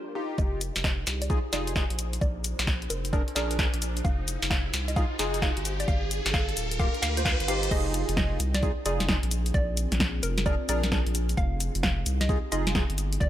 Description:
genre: UK garage, two-step garage.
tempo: 131 BPM.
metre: 4/4.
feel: swing 64% on 16ths.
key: F dorian.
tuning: A4 = 440 Hz.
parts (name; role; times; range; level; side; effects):
ethereal airy pad; sustained chords; 0.0-13.3 s; Bb3 to G5; -40 LUFS; equal; ensemble chorus, built-in reverb, sidechain pumping.
percussive organ stab; stabs; 0.2-12.8 s; Bb3 to C5; -33 LUFS; equal; analog chorus, ping-pong delay.
hollow square pluck; melody; 0.4-13.3 s; Bb4 to F5; -36 LUFS; right 1 dB; chorus, cassette tape, tape echo.
saturated sub bass; bass; 0.4-13.3 s; D1 to D2; -30 LUFS; equal; none.
electronic kick drum; drums; 0.4-13.3 s; none; -27 LUFS; equal; overdrive.
punchy analog drum machine; drums; 0.4-13.3 s; cabasa, crash cymbal, hi-hat, snare drum; -30 LUFS; equal; overdrive, high-pass filter on snare, low-pass filter on snare, high-pass filter on perc, low-pass filter on perc, high-pass filter on hats, low-pass filter on hats, high-pass filter on cymbals, low-pass filter on cymbals.
riser; sound effects; 2.2-7.7 s; none; -36 LUFS; equal; none.
room: light reverb, digital ambience.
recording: none.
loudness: -24 LUFS.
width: side -12 dB against mid.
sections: 0.4-7.7 A section; 7.7-13.3 B section.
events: build-up 0.4-7.7; filter sweep on synth pluck 0.4-7.7; filter sweep on ambient pad 0.4-7.7; riser 2.2-7.7; drop 7.7-13.3.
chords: 0.4 Fm7; 2.0 Bb7; 4.0 Fm7; 5.7 Gm7; 7.7 Fm7; 9.3 Bb7; 11.4 Fm7.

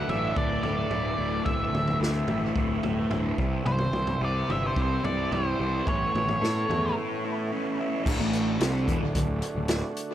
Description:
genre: psychedelic rock.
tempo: 109 BPM.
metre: 4/4.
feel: straight.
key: D mixolydian.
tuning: A4 = 440 Hz.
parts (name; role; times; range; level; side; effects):
octave-fuzz lead guitar; melody; 0.0-6.9 s; C5 to E5; -31 LUFS; equal; distortion, dub echo.
percussive tonewheel organ; sustained chords; 0.0-10.1 s; D3 to F#4; -36 LUFS; right 4 dB; slow rotary speaker, overdrive.
fuzz guitar; riff; 0.0-9.8 s; D2 to C5; -29 LUFS; left 1 dB; distortion, phaser.
fuzz picked electric bass; bass; 0.0-9.8 s; D1 to A2; -30 LUFS; equal; overdrive.
vintage drum kit; drums; 0.1-10.1 s; crash cymbal, hi-hat, kick drum, snare drum, toms; -31 LUFS; equal; dub echo.
room: light reverb, small room ambience.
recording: echo-heavy mix.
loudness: -24 LUFS.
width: side -11 dB against mid.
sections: 0.0-8.1 A section; 8.1-10.1 B section.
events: break 7.0-8.1.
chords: 0.0 Dsus2; 3.4 C; 5.9 Aadd9; 8.1 D.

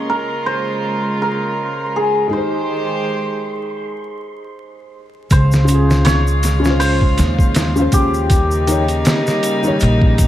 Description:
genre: trip hop.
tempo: 80 BPM.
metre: 4/4.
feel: swing 56% on 16ths.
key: unclear.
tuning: A4 = 441 Hz.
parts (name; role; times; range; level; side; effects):
cimbalom; melody; 0.0-10.3 s; G4 to Eb5; -21 LUFS; equal; tape echo.
felt-muted upright piano; accompaniment; 0.0-9.8 s; Db3 to Db5; -22 LUFS; left 1 dB; tremolo, vintage 12-bit sampler grit, tape echo.
rich chamber string section; sustained chords; 0.0-10.3 s; Db3 to C5; -23 LUFS; equal; vintage 12-bit sampler grit.
wind-like tuned noise texture; texture; 0.0-3.8 s; C6; -34 LUFS; equal; built-in reverb.
upright bass; bass; 5.3-10.3 s; Bb1 to Eb2; -16 LUFS; equal; none.
trip hop sampler-style drum kit; drums; 5.3-10.3 s; hi-hat, kick drum, snare drum; -16 LUFS; equal; studio ambience.
tube shaker; percussion; 5.3-10.3 s; none; -31 LUFS; left 1 dB; none.
room: light reverb, small room ambience.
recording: vinyl crackle.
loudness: -14 LUFS.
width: side -12 dB against mid.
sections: 0.0-5.3 A section; 5.3-10.3 B section.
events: break 3.8-5.3.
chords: 0.0 Bbm7; 2.3 Abmaj7; 5.3 Dbmaj7; 8.3 Eb7.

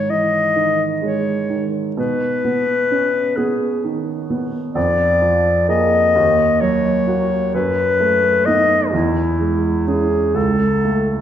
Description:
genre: classical, romantic duo for clarinet and grand piano.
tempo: 43 BPM (dotted quarters).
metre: 6/8.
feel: rubato.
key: unclear.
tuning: A4 = 440 Hz.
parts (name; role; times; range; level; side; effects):
warm clarinet; melody; 0.0-11.2 s; E4 to D#5; -17 LUFS; left 3 dB; none.
clear baby grand piano; accompaniment; 0.0-11.2 s; C#2 to G#4; -19 LUFS; right 3 dB; none.
room: wet recital hall reverb, RT60 1.7 s.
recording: heard from further back in the room.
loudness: -15 LUFS.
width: side -10 dB against mid.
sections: 0.0-11.2 A section.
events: none.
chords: 0.0 G#5; 2.0 Badd9; 4.8 A#7/E#; 6.2 D#m; 7.5 B7/F#; 8.9 E6; 10.4 A/C#.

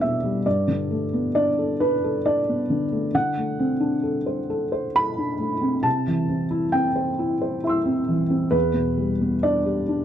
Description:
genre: neoclassical minimalist piano.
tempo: 67 BPM.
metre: 3/4.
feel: rubato.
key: G major.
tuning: A4 = 440 Hz.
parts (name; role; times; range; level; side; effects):
felt-muted upright piano; solo; 0.0-10.0 s; E2 to E6; -20 LUFS; equal; none.
room: light reverb.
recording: dark, warm production.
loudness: -20 LUFS.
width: side -10 dB against mid.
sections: 0.0-10.0 A section.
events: none.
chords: 0.5 Gadd9; 3.1 D7; 5.9 Am/C; 8.5 Em7.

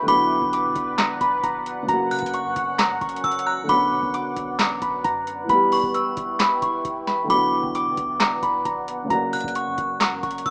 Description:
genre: hip hop, trap.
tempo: 133 BPM.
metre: 4/4.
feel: half-time.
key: B harmonic minor.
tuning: A4 = 439 Hz.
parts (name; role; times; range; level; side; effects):
concert harp; melody; 0.0-10.5 s; A#5 to E6; -25 LUFS; equal; low-pass filter, digital delay.
metallic FM bell; second line; 0.0-10.5 s; C#6 to F#6; -30 LUFS; equal; chorus.
dark concert grand piano; accompaniment; 0.0-10.5 s; C#3 to G4; -32 LUFS; equal; low-pass filter.
deep dark ambient pad; sustained chords; 0.0-10.5 s; E3 to G5; -33 LUFS; equal; chorus, built-in reverb.
clean 808-style bass; bass; 0.0-10.5 s; E1 to C#3; -45 LUFS; equal; none.
booming analog drum machine; drums; 0.1-10.5 s; handclaps, hi-hat, kick drum, snare drum; -28 LUFS; equal; overdrive, vintage 12-bit sampler grit.
room: light reverb.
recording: rough home demo mix, small speaker sound.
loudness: -22 LUFS.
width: mono.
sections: 0.0-10.5 A section.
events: none.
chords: 0.1 Bm; 1.9 F#; 3.7 Bm; 5.5 Em; 7.3 Bm; 9.1 F#.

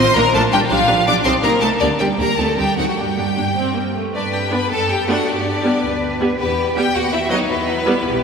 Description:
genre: quick classical-period movement for string orchestra.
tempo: 107 BPM (dotted quarters).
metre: 6/8.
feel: rubato.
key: G minor, G major from 4.1 s.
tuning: A4 = 442 Hz.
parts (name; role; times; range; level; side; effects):
rich studio violin section; melody; 0.0-8.2 s; B4 to D6; -20 LUFS; left 2 dB; none.
clear studio violin section; second line; 0.0-8.2 s; B3 to D5; -21 LUFS; left 2 dB; none.
rich studio viola section; accompaniment; 0.0-8.0 s; F#3 to G4; -22 LUFS; right 1 dB; none.
rich studio double bass section; bass; 0.0-8.2 s; Bb1 to G2; -26 LUFS; right 2 dB; none.
rich symphonic cello section; bass; 0.0-8.2 s; D3 to B4; -23 LUFS; right 3 dB; none.
room: wet church reverb, RT60 3.1 s.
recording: minimal, uncompressed stereo recording.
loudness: -15 LUFS.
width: side -6 dB against mid.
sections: 0.0-4.1 A section; 4.1-8.2 B section.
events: none.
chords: 0.2 Bb; 0.7 G7; 1.3 Cm; 1.8 Gm/D; 2.4 D7b9; 3.0 Gm; 4.1 G; 4.7 D/F#; 5.3 G; 6.4 Em; 6.9 B/D#; 7.5 Em.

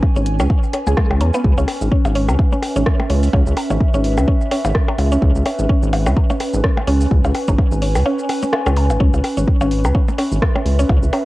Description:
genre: minimal techno.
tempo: 127 BPM.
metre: 4/4.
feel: swing 57% on 16ths.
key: C# minor.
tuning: A4 = 441 Hz.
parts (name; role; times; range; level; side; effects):
electronic kick drum; drums; 0.0-11.0 s; none; -16 LUFS; equal; overdrive, cassette tape.
percussion blips; percussion; 0.0-11.2 s; none; -25 LUFS; left 1 dB; overdrive, cassette tape, analog delay.
warbly tape-like pad; texture; 0.0-11.2 s; C#4 to G#5; -24 LUFS; equal; chorus, built-in reverb, sidechain pumping, cassette tape.
mallet-like synth pluck; riff; 0.2-11.2 s; G#3 to G#4; -23 LUFS; equal; chorus, sidechain pumping, cassette tape, tape echo.
rubbery square bass; bass; 0.2-11.1 s; G#1 to E2; -17 LUFS; equal; sidechain pumping.
punchy analog drum machine; drums; 0.2-11.2 s; hi-hat, rim click, shaker; -27 LUFS; equal; overdrive, cassette tape.
room: light reverb, digital ambience.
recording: home recording on cassette.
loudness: -14 LUFS.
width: side -18 dB against mid.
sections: 0.0-11.2 A section.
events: kick drops out 8.1-9.0.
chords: 0.0 C#m7.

